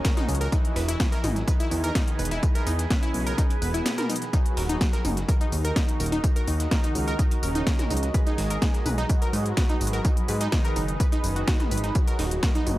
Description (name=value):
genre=melodic techno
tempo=126 BPM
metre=4/4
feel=straight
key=Eb phrygian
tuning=A4 = 439 Hz
part: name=soft supersaw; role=melody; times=0.0-12.8 s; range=B2 to Ab4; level=-34 LUFS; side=right 1 dB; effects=sidechain pumping, tape echo
part: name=deep dark ambient pad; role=sustained chords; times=0.0-12.8 s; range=Gb4 to B5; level=-35 LUFS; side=right 2 dB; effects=chorus, built-in reverb, sidechain pumping
part: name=analog pluck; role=arpeggios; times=0.0-12.6 s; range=Eb4 to B4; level=-32 LUFS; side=equal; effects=chorus, sidechain pumping, tape echo
part: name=breakbeat sampler-style drum kit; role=drums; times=0.0-12.8 s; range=hi-hat, snare drum, tambourine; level=-39 LUFS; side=equal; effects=high-pass filter on perc, high-pass filter on snare, high-pass filter on hats, high-pass filter on room
part: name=electronic kick drum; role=drums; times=0.0-12.5 s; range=none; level=-24 LUFS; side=equal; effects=none
part: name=techno drum kit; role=drums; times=0.0-12.8 s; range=hi-hat, snare drum, toms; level=-31 LUFS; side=equal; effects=none
part: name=fat analog bass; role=bass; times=0.3-12.8 s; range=Eb1 to Ab2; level=-26 LUFS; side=equal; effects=sidechain pumping
room=digital ambience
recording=dry, gritty hardware recording, transformer saturation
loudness=-22 LUFS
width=side -16 dB against mid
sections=0.0-12.8 A section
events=kick drops out 3.9-4.3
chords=0.0 Ebm; 0.5 E; 4.3 Ebm; 8.1 Abm; 12.0 Ebm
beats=0.05 | 0.52 1.00 1.48 1.95 | 2.43 2.90 3.38 3.86 | 4.33 4.81 5.29 5.76 | 6.24 6.71 7.19 7.67 | 8.14 8.62 9.10 9.57 | 10.05 10.52 11.00 11.48 | 11.95 12.43